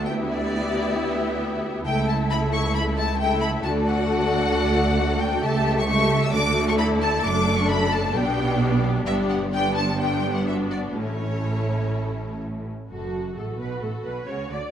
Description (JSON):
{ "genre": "quick classical-period movement for string orchestra", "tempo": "132 BPM", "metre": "4/4", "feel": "rubato", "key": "D major", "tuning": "A4 = 438 Hz", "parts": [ { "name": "rich symphonic violin section", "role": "melody", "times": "0.0-14.6 s", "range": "F#4 to E6", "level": "-27 LUFS", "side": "left 3 dB", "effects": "none" }, { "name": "warm symphonic violin section", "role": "second line", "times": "0.0-14.7 s", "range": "E4 to E5", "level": "-28 LUFS", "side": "left 3 dB", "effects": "none" }, { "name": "rich symphonic viola section", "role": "accompaniment", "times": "0.0-14.7 s", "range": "A3 to D5", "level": "-27 LUFS", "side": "right 1 dB", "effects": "none" }, { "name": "clear symphonic double bass section", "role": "bass", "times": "0.0-14.6 s", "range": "F#1 to D2", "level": "-28 LUFS", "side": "right 3 dB", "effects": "none" }, { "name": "rich symphonic cello section", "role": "bass", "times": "0.0-14.6 s", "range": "C#2 to D3", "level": "-28 LUFS", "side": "right 2 dB", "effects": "none" } ], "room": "moderate recital hall reverb, RT60 1.4 s", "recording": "dark, warm production", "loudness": "-21 LUFS", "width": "side -9 dB against mid", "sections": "0.0-12.9 A section; 12.9-14.7 B section", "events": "none", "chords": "0.1 Em7/D; 1.9 A/C#; 3.6 D; 5.4 A7/C#; 6.3 D; 7.2 D/F#; 8.1 G/B; 9.1 G; 10.9 A; 12.9 D/F#" }